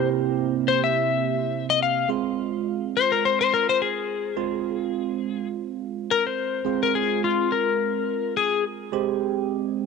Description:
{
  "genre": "blues",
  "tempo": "105 BPM",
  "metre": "4/4",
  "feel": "swing 56% on 16ths",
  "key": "F minor",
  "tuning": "A4 = 440 Hz",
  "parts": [
    { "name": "clean lap steel guitar", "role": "melody", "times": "0.0-8.6 s", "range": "F4 to F5", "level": "-23 LUFS", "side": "left 8 dB", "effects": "none" },
    { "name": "barky tine electric piano", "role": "accompaniment", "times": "0.0-9.9 s", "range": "C3 to G4", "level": "-26 LUFS", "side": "right 12 dB", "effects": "phaser" }
  ],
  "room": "light reverb, digital ambience",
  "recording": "1960s-style stereo with parts hard left and right",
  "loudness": "-22 LUFS",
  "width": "side -5 dB against mid",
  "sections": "0.0-2.1 A section; 2.1-9.9 B section",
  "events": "electric slide guitar solo 0.0-2.1",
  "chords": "0.0 C7; 2.1 Fm",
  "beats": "0.37 0.94 1.51 | 2.08 2.65 3.22 3.79 | 4.36 4.93 5.50 6.07 | 6.64 7.21 7.78 8.35 | 8.92 9.49"
}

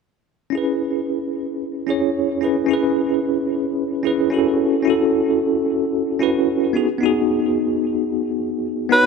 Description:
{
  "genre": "chillout",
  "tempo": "111 BPM",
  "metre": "4/4",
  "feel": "straight",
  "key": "A major",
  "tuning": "A4 = 440 Hz",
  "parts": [
    { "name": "bell-like tine electric piano", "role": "accompaniment", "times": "0.5-9.1 s", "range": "B3 to C#5", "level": "-18 LUFS", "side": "moving between left 3 dB and right 4 dB", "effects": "fast stereo tremolo, auto-pan, tape echo" },
    { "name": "clear soprano saxophone", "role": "melody", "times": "8.9-9.1 s", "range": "B4", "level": "-11 LUFS", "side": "equal", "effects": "none" }
  ],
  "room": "wet plate reverb, RT60 2.5 s",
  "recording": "none",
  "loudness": "-18 LUFS",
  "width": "side -5 dB against mid",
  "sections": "0.5-9.1 A section",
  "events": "none",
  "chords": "0.5 Amaj9 (rootless); 4.6 A69/C#; 6.8 B6",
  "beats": "| 0.54 1.08 1.62 2.16 | 2.70 3.24 3.78 4.32 | 4.86 5.40 5.94 6.48 | 7.02 7.56 8.10 8.64"
}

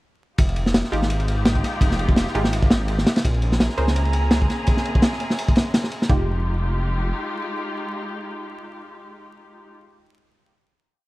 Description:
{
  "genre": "drum and bass, jungle",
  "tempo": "168 BPM",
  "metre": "4/4",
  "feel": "swing 54% on 16ths",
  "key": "F minor",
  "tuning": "A4 = 440 Hz",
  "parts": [
    { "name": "muted studio string section", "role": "sustained chords", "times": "0.4-9.7 s", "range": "Ab3 to Ab4", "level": "-30 LUFS", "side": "left 1 dB", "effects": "vintage 12-bit sampler grit" },
    { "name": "dark detuned saw bass", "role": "bass", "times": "0.4-7.1 s", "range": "F1 to Db2", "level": "-22 LUFS", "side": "equal", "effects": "none" },
    { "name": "crunchy breakbeat drum kit", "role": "drums", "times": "0.4-6.2 s", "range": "kick drum, ride cymbal, snare drum", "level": "-19 LUFS", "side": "equal", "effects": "none" },
    { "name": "filtered dub chord stab", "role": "stabs", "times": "0.9-3.9, 6.1-10.4 s", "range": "Ab3 to C5", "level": "-30 LUFS", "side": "right 2 dB", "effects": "chorus, dub echo" },
    { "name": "wind-like tuned noise texture", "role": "texture", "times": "3.5-4.7 s", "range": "Bb5", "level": "-35 LUFS", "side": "right 6 dB", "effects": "built-in reverb" }
  ],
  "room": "studio ambience",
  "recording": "vinyl crackle",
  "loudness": "-18 LUFS",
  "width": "side -19 dB against mid",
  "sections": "0.4-6.1 drop; 6.1-9.0 final chord",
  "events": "drop 0.4-6.1",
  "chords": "0.4 Fm9; 3.2 Bbm9; 6.1 Fm9",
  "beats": "| 0.39 0.74 1.10 1.46 | 1.81 2.17 2.53 2.88 | 3.24 3.60 3.96 4.31 | 4.67 5.03 5.38 5.74 | 6.10 6.46 6.81 7.17 | 7.53 7.88 8.24 8.60"
}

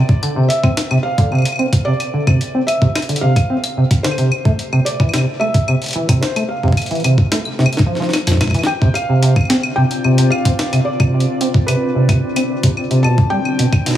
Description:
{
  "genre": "IDM",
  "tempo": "110 BPM",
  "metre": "4/4",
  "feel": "straight",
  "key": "D dorian",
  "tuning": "A4 = 440 Hz",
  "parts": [
    { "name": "felt-muted upright piano", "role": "melody", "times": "0.0-14.0 s", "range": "B4 to A5", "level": "-23 LUFS", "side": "equal", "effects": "dub echo" },
    { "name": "deep acid bass", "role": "arpeggios", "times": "0.0-14.0 s", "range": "B2 to C4", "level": "-17 LUFS", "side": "right 1 dB", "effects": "wide subtle chorus, dub echo" },
    { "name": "electronic kick drum", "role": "drums", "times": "0.1-13.8 s", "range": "none", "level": "-14 LUFS", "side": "equal", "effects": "none" },
    { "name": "jungle sampler-style drum kit", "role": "drums", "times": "0.2-14.0 s", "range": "claves, hi-hat, snare drum", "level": "-21 LUFS", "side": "left 2 dB", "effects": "tape echo" },
    { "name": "warbly tape-like pad", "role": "sustained chords", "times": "9.1-14.0 s", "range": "D3 to D5", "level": "-21 LUFS", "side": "left 2 dB", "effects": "chorus, built-in reverb" }
  ],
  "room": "moderate echo chamber reverb, RT60 2.5 s",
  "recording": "heavily compressed radio sound, small room ambience",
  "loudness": "-13 LUFS",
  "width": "side -12 dB against mid",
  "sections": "0.0-14.0 A section",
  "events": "drum fill 7.6-8.7",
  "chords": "0.0 Dm7; 4.3 Fmaj7; 8.7 Dm7; 13.0 Cmaj7sus2",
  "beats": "0.50 1.04 1.59 | 2.13 2.68 3.23 3.77 | 4.32 4.86 5.41 5.95 | 6.50 7.04 7.59 8.13 | 8.68 9.23 9.77 10.32 | 10.86 11.41 11.95 12.50 | 13.04 13.59"
}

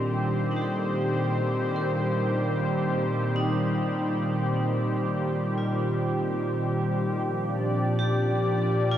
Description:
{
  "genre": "ambient",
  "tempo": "free time",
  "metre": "none",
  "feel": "none",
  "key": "unclear",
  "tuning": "A4 = 436 Hz",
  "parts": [
    { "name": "warm analog pad", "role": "sustained chords", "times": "0.0-9.0 s", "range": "Bb2 to D5", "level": "-25 LUFS", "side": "equal", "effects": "chorus" },
    { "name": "vibraphone with hard mallets", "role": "arpeggios", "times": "0.0-9.0 s", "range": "D4 to C5", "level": "-32 LUFS", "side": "left 1 dB", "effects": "analog delay" },
    { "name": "warm chamber cello section", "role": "bass", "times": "7.3-9.0 s", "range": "Bb2", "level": "-30 LUFS", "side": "equal", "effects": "none" }
  ],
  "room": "wet huge ambient reverb, RT60 9.7 s",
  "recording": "dreamy mix soaked in reverb",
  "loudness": "-24 LUFS",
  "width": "side -10 dB against mid",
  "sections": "0.0-7.3 A section; 7.3-9.0 B section",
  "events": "none",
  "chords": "0.0 Cm/Bb; 7.3 Bb6",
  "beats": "free time"
}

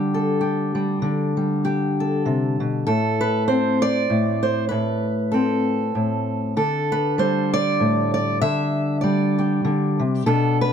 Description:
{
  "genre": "folk, solo fingerstyle acoustic guitar",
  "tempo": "97 BPM",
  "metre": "3/4",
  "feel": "swing 57% on 8ths",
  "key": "unclear",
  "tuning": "A4 = 439 Hz",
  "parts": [
    { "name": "fingerpicked steel-string acoustic guitar", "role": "solo", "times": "0.0-10.7 s", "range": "A2 to E5", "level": "-19 LUFS", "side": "equal", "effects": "none" }
  ],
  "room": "light reverb",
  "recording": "none",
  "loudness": "-19 LUFS",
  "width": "side -8 dB against mid",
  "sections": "0.0-2.9 A section; 2.9-10.7 B section",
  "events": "none",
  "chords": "0.0 Dsus4; 2.9 Am; 6.6 Dsus4",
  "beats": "0.40 | 1.02 1.63 2.25 | 2.87 3.48 4.10 | 4.71 5.33 5.95 | 6.56 7.18 7.79 | 8.41 9.03 9.64 | 10.26"
}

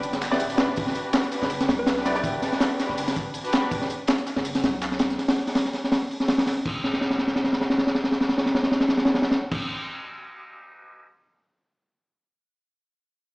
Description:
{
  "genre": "drum and bass, jungle",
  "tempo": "163 BPM",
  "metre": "4/4",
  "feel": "swing 54% on 16ths",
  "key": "E minor",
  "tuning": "A4 = 441 Hz",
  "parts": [
    { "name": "warm studio string section", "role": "sustained chords", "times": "0.0-3.7 s", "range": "D4 to B4", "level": "-30 LUFS", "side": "equal", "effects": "none" },
    { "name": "long sustained 808-style bass", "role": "bass", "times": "0.0-9.5 s", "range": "D1 to B1", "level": "-38 LUFS", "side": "equal", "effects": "none" },
    { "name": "breakbeat sampler-style drum kit", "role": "drums", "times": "0.0-5.2 s", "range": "hi-hat, shaker, snare drum", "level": "-33 LUFS", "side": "equal", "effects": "high-pass filter on snare, high-pass filter on perc, high-pass filter on hats" },
    { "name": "crunchy breakbeat drum kit", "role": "drums", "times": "0.0-11.1 s", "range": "crash cymbal, hi-hat, kick drum, snare drum", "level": "-23 LUFS", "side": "equal", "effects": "none" },
    { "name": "clear baby grand piano", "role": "stabs", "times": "0.3-2.3 s", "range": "B3 to D5", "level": "-30 LUFS", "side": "equal", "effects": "dub echo" },
    { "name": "soft struck synth lead", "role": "melody", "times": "1.8-2.0 s", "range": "B4", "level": "-34 LUFS", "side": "equal", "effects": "none" }
  ],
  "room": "moderate echo chamber reverb, RT60 2.0 s, small room ambience",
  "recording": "played on a big sound system in a bare room, large studio reverb, small speaker sound",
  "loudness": "-22 LUFS",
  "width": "side -29 dB against mid",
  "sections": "0.0-6.7 A section; 6.7-9.6 B section",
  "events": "drop 0.0-6.7; drum fill 6.8-9.5",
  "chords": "0.0 Em7; 6.7 N.C.",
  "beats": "0.03 0.40 | 0.77 1.14 1.50 1.87 | 2.24 2.61 2.98 3.35 | 3.71 4.08 4.45 4.82 | 5.18 5.55 5.92 6.29 | 6.66 7.03 7.39 7.76 | 8.13 8.50 8.87 9.23"
}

